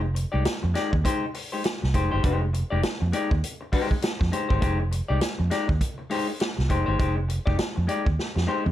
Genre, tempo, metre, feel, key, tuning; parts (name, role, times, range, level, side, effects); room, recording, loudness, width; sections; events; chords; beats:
funk; 101 BPM; 4/4; swing 60% on 16ths; F dorian; A4 = 440 Hz
semi-hollow electric guitar; accompaniment; 0.0-8.7 s; Ab3 to D5; -28 LUFS; left 3 dB
vintage muted fingered electric bass; bass; 0.0-8.7 s; F1 to F2; -25 LUFS; right 1 dB
vintage drum kit; drums; 0.2-8.7 s; hi-hat, kick drum, snare drum, toms; -27 LUFS; right 1 dB
light reverb; -23 LUFS; side -13 dB against mid
0.0-8.7 A section
drum fill 8.2-8.7
0.0 Fm9
0.46 1.05 1.65 | 2.24 2.84 3.43 4.03 | 4.62 5.21 5.81 6.40 | 7.00 7.59 8.18